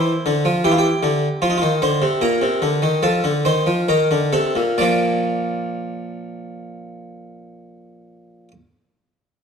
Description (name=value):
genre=classical, baroque-style two-part invention for harpsichord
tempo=66-81 BPM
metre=4/4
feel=straight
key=Bb major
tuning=A4 = 440 Hz
part: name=harpsichord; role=solo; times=0.0-8.5 s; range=Bb2 to D5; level=-17 LUFS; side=equal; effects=none
room=wet stone room reverb, RT60 1.3 s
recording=dark, warm production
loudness=-16 LUFS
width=side -6 dB against mid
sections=0.0-4.8 A section; 4.8-8.4 B section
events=slowing down 0.0-4.8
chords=0.0 C; 1.4 Bb; 3.0 F7; 4.8 Bb